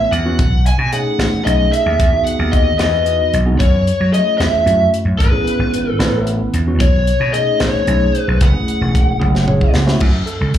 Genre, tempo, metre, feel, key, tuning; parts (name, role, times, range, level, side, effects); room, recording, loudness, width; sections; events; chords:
electric jazz fusion; 75 BPM (dotted quarters); 6/8; straight; F# dorian; A4 = 440 Hz
lead guitar through a small cranked amp; melody; 0.0-9.7 s; B4 to G#5; -18 LUFS; left 1 dB; overdrive, slapback echo
tine electric piano; accompaniment; 0.0-10.6 s; A3 to F#5; -21 LUFS; right 1 dB; phaser, slapback echo
vintage slap bass; bass; 0.1-10.5 s; E1 to F#3; -16 LUFS; equal
tight funk drum kit; drums; 0.1-10.6 s; crash cymbal, hi-hat, kick drum, snare drum, toms; -18 LUFS; equal
light reverb, studio reverb; live gig heard through the venue's PA, club reverb; -12 LUFS; side -11 dB against mid
0.0-10.0 A section
drum fill 9.2-10.0; tine electric piano fill 9.2-10.0
0.4 B13; 2.0 Emaj9; 3.6 F#m9; 5.2 Amaj9; 6.8 B13; 8.4 F#m9; 10.0 F#m